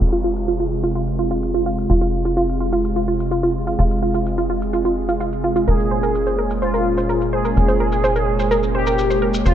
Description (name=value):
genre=melodic techno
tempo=127 BPM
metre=4/4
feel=straight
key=F minor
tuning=A4 = 441 Hz
part: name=lush unison pad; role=sustained chords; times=0.0-9.5 s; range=Bb2 to F4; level=-23 LUFS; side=right 1 dB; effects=chorus
part: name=tight sequencer bass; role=bass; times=0.0-9.5 s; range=F1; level=-22 LUFS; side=equal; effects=none
part: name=shaker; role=drums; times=0.0-9.5 s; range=none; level=-38 LUFS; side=left 3 dB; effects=none
part: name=downlifter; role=sound effects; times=0.0-1.9 s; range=none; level=-41 LUFS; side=equal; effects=none
part: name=wide unison pluck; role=arpeggios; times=0.1-9.5 s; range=F4 to C5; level=-21 LUFS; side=right 2 dB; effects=digital delay
part: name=analog synth brass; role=melody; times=5.7-9.5 s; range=F4 to Ab4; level=-21 LUFS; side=left 1 dB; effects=chorus, dub echo
room=moderate huge ambient reverb, RT60 4.6 s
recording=dark, warm production, low-pass filter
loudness=-17 LUFS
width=side -10 dB against mid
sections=0.0-9.5 A section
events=filter sweep on synth arpeggio sound 0.0-9.5; filter sweep 0.0-9.5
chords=0.0 Fm; 5.7 Bbm7/F